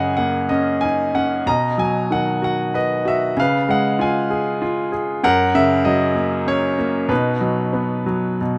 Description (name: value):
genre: classical, lyrical solo piano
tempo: 95 BPM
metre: 3/4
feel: rubato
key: B major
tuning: A4 = 440 Hz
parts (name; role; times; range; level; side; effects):
- bright grand piano; solo; 0.0-8.6 s; F#2 to A#5; -19 LUFS; equal; none
room: light reverb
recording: close, detailed microphones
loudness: -19 LUFS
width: mono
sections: 0.0-8.6 A section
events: none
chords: 0.0 F#6; 1.5 B; 3.4 C#7; 5.2 F#; 7.1 B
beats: 0.18 0.82 | 1.47 2.11 2.74 | 3.37 3.99 4.61 | 5.23 5.84 6.47 | 7.10 7.74 8.40